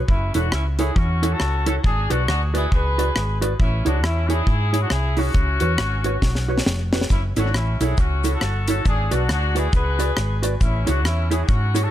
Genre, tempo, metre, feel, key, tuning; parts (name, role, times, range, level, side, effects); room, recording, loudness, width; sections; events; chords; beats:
ska; 137 BPM; 4/4; swing 60% on 8ths; F# minor; A4 = 439 Hz
clear horn section; melody; 0.1-11.9 s; C#4 to B4; -26 LUFS; left 2 dB; tape echo
hollow-body short-scale fingered electric bass; bass; 0.1-11.9 s; E1 to G#2; -22 LUFS; equal
deep reggae drum kit; drums; 0.1-11.8 s; hi-hat, kick drum, rim click, snare drum; -22 LUFS; equal; tape echo
mellow electric guitar; accompaniment; 0.3-11.9 s; E4 to D5; -27 LUFS; right 3 dB
cabasa; percussion; 7.1-11.8 s; -41 LUFS; left 8 dB
little or no reverb; -18 LUFS; side -12 dB against mid
0.0-11.9 A section
drum fill 6.2-7.1
0.1 F#m7; 1.8 G#m7b5; 3.6 Amaj7; 5.3 C#7sus4; 7.1 F#m7; 8.9 G#m7b5; 10.6 Amaj7
| 0.09 0.52 0.96 1.40 | 1.84 2.28 2.72 3.16 | 3.60 4.03 4.47 4.91 | 5.35 5.79 6.23 6.66 | 7.10 7.54 7.98 8.42 | 8.86 9.30 9.73 10.17 | 10.61 11.05 11.49